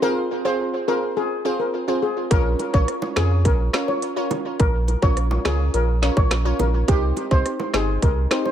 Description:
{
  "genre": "dancehall",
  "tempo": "105 BPM",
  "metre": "4/4",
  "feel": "straight",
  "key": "Bb dorian",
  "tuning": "A4 = 445 Hz",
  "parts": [
    { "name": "steel pan", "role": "melody", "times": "0.0-8.5 s", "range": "G4 to Db5", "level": "-25 LUFS", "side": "left 2 dB", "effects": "tape echo" },
    { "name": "glassy wavetable pluck", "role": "accompaniment", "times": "0.0-8.5 s", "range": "C4 to Db5", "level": "-25 LUFS", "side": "right 1 dB", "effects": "chorus, sidechain pumping, tape echo" },
    { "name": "warm sub bass", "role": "bass", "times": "2.3-8.3 s", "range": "G1 to F2", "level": "-21 LUFS", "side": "equal", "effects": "none" },
    { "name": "island pop drum kit", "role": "drums", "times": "2.3-8.4 s", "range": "hi-hat, kick drum, rim click, snare drum", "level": "-20 LUFS", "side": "equal", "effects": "vintage 12-bit sampler grit" },
    { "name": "bongos", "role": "percussion", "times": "2.6-8.5 s", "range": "none", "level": "-32 LUFS", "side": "right 5 dB", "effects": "tape echo" }
  ],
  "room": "little or no reverb",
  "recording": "echo-heavy mix",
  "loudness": "-18 LUFS",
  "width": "side -10 dB against mid",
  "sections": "0.0-8.5 A section",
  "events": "none",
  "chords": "0.0 Fm; 2.3 Bbm; 6.9 Cm"
}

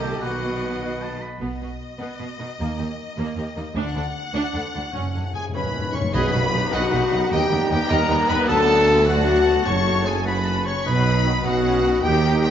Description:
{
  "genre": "cinematic, heroic adventure film score",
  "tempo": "102 BPM (dotted quarters)",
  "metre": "6/8",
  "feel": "straight",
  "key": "B major",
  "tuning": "A4 = 440 Hz",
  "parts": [
    { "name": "clear symphonic violin section", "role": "melody", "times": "0.0-12.5 s", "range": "Eb5 to C#6", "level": "-29 LUFS", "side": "left 4 dB", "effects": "none" },
    { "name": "mellow clarinet", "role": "second line", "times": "0.0-0.8, 6.1-12.5 s", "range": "B3 to A4", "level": "-34 LUFS", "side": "equal", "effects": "none" },
    { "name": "warm oboe", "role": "second line", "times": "0.0-1.4, 6.1-12.5 s", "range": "D#5 to B5", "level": "-33 LUFS", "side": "left 1 dB", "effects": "none" },
    { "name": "warm studio violin section", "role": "second line", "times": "0.0-12.5 s", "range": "A#3 to B5", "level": "-33 LUFS", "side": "left 1 dB", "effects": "none" },
    { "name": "warm symphonic viola section", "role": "accompaniment", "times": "0.0-12.5 s", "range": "A3 to G#4", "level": "-30 LUFS", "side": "right 1 dB", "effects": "none" },
    { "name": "mellow French horn section", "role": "sustained chords", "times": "0.0-1.2, 5.3-12.5 s", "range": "F#3 to C#5", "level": "-24 LUFS", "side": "left 4 dB", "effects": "none" },
    { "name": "mellow trombone section", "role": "sustained chords", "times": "0.0-1.2, 6.1-12.5 s", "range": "Bb2 to D#4", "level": "-32 LUFS", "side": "right 2 dB", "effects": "none" },
    { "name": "dark trumpet section", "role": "stabs", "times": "0.0-1.2, 5.3-12.5 s", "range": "F#4 to C#5", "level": "-26 LUFS", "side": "equal", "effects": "none" },
    { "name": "rich studio double bass section", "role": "bass", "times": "0.0-12.5 s", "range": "F#1 to D#2", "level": "-28 LUFS", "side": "right 3 dB", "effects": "none" },
    { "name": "rich symphonic cello section", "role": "bass", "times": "0.0-12.5 s", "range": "D2 to D#3", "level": "-29 LUFS", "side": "right 3 dB", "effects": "none" },
    { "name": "cymbal swell and tam-tam", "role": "percussion", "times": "3.8-7.7 s", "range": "none", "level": "-35 LUFS", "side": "left 2 dB", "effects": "none" },
    { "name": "timpani", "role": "percussion", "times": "5.0-6.7, 9.7-10.2 s", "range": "F#2 to B2", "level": "-30 LUFS", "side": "left 1 dB", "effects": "none" },
    { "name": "silver concert flute", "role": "second line", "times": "5.3-12.5 s", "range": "F#5 to C#6", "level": "-30 LUFS", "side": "left 2 dB", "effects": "none" },
    { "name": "mellow tuba", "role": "bass", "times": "6.1-12.5 s", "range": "F#1 to D#2", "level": "-26 LUFS", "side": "right 2 dB", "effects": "none" }
  ],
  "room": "wet scoring stage reverb, RT60 1.8 s",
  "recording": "nothing above 7.6 kHz",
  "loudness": "-19 LUFS",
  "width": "side -9 dB against mid",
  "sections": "0.0-1.4 A section; 1.4-6.1 B section; 6.1-12.5 C section",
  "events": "timpani fill 4.9-6.1; band accent 6.1-6.5",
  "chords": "0.2 B; 2.6 D#5; 3.8 D; 4.9 F#5; 6.1 B; 7.3 D#; 8.5 D; 9.7 F#m; 10.9 B"
}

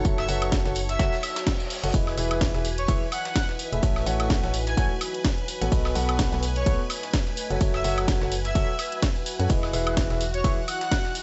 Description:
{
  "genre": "piano house",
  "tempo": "127 BPM",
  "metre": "4/4",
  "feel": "swing 57% on 16ths",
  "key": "E major",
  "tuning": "A4 = 440 Hz",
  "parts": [
    { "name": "string machine, violins", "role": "sustained chords", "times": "0.0-11.2 s", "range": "F#4 to C#6", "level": "-39 LUFS", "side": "equal", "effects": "ensemble chorus, sidechain pumping" },
    { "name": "warm grand piano", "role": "riff", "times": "0.0-10.6 s", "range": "E3 to F#5", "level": "-32 LUFS", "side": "equal", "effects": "sidechain pumping, analog delay" },
    { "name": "organ-like FM bass", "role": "bass", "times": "0.0-10.6 s", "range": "E1 to F#2", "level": "-31 LUFS", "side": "equal", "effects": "sidechain pumping" },
    { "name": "dusty soul sampler-style drum kit", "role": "drums", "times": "0.0-11.2 s", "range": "hi-hat, snare drum, tambourine", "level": "-40 LUFS", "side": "equal", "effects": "sidechain pumping on perc, high-pass filter on perc, high-pass filter on snare, sidechain pumping on hats, high-pass filter on hats" },
    { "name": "electronic kick drum", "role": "drums", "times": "0.0-11.0 s", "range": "none", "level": "-28 LUFS", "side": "equal", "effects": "none" },
    { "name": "house drum kit", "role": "drums", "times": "0.0-11.2 s", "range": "hi-hat, ride cymbal, snare drum, woodblock", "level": "-35 LUFS", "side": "equal", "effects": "none" },
    { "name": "tambourine", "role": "percussion", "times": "0.0-11.2 s", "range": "none", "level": "-46 LUFS", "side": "equal", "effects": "none" },
    { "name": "deep dark ambient pad", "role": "texture", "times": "0.0-11.2 s", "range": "A3 to B5", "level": "-41 LUFS", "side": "equal", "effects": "none" },
    { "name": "airy dreamy lead", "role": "melody", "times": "0.2-11.0 s", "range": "C#5 to G#5", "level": "-34 LUFS", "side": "equal", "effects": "chorus, analog delay" },
    { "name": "reverse cymbal", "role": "sound effects", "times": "1.2-1.9 s", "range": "none", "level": "-40 LUFS", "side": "equal", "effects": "none" }
  ],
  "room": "little or no reverb",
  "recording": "dry, gritty hardware recording, nothing above 7.9 kHz",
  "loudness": "-25 LUFS",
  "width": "mono",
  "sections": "0.0-11.2 A section",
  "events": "reverse cymbal 1.2-1.9",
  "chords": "0.0 F#m7; 1.9 Emaj7; 3.8 A6; 5.7 B7; 7.4 F#m7; 9.5 Emaj7"
}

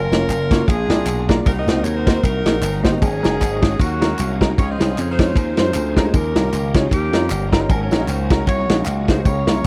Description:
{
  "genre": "uptempo gospel",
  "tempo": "154 BPM",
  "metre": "4/4",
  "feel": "swing 57% on 8ths",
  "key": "unclear",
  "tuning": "A4 = 438 Hz",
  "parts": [
    { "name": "mellow saxophone section", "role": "melody", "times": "0.0-9.7 s", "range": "Bb3 to Eb5", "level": "-26 LUFS", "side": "equal", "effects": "none" },
    { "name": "bright tonewheel organ", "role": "sustained chords", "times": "0.0-9.7 s", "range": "F3 to Bb4", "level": "-34 LUFS", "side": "equal", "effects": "none" },
    { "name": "slap bass with an envelope filter", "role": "bass", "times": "0.0-9.7 s", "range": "F1 to Gb2", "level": "-24 LUFS", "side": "equal", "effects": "none" },
    { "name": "warm upright piano", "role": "accompaniment", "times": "0.1-9.7 s", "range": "Ab2 to Eb5", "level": "-25 LUFS", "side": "equal", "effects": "none" },
    { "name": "warm soul drum kit", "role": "drums", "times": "0.1-9.7 s", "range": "kick drum, ride cymbal, snare drum", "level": "-20 LUFS", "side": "equal", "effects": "none" },
    { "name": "tambourine and handclaps", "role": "percussion", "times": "0.1-9.6 s", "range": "none", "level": "-38 LUFS", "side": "equal", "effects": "none" }
  ],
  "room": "little or no reverb",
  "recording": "dry, close 1970s-style studio recording",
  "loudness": "-18 LUFS",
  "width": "mono",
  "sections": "0.0-9.7 A section",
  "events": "none",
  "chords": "0.0 Gbmaj7; 0.7 Bb7; 1.5 Cm7b5; 3.0 Ab9sus4; 4.6 Dbmaj9; 6.1 Eb9; 7.7 Ab9sus4"
}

